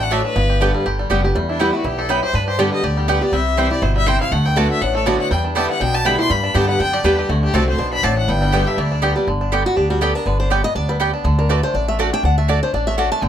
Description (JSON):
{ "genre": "bluegrass", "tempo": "242 BPM", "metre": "4/4", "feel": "swing 55% on 8ths", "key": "G major", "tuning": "A4 = 438 Hz", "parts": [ { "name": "bluegrass banjo", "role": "melody", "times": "0.0-13.3 s", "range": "D3 to G4", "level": "-24 LUFS", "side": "right 2 dB", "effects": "analog delay" }, { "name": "rich fiddle", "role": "melody", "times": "0.0-9.2 s", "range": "D4 to C6", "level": "-22 LUFS", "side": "left 3 dB", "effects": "none" }, { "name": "picked old ladder-braced acoustic guitar", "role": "accompaniment", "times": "0.0-13.3 s", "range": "E2 to A5", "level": "-21 LUFS", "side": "left 1 dB", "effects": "none" }, { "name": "upright bass", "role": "bass", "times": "0.0-13.3 s", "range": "F#1 to G2", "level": "-20 LUFS", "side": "equal", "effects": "none" }, { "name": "mandolin", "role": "stabs", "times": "0.1-13.1 s", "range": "A3 to A5", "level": "-21 LUFS", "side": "right 6 dB", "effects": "none" } ], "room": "light reverb", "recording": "close, detailed microphones", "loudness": "-15 LUFS", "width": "side -10 dB against mid", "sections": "0.0-1.3 A section; 1.3-9.3 B section; 9.3-13.3 C section", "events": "steel-string acoustic guitar solo 9.3-13.3", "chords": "0.4 G; 1.3 Em; 2.3 G; 3.3 C; 4.3 D6; 5.3 Em7; 6.3 G; 7.3 D7; 8.3 G; 11.3 D", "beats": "0.11 | 0.36 0.61 0.85 1.10 | 1.35 1.60 1.84 2.09 | 2.34 2.59 2.83 3.08 | 3.33 3.58 3.83 4.07 | 4.32 4.57 4.82 5.06 | 5.31 5.56 5.81 6.05 | 6.30 6.55 6.80 7.05 | 7.29 7.54 7.79 8.04 | 8.28 8.53 8.78 9.03 | 9.27 9.52 9.77 10.02 | 10.26 10.51 10.76 11.01 | 11.25 11.50 11.75 11.99 | 12.24 12.49 12.74 12.98 | 13.23" }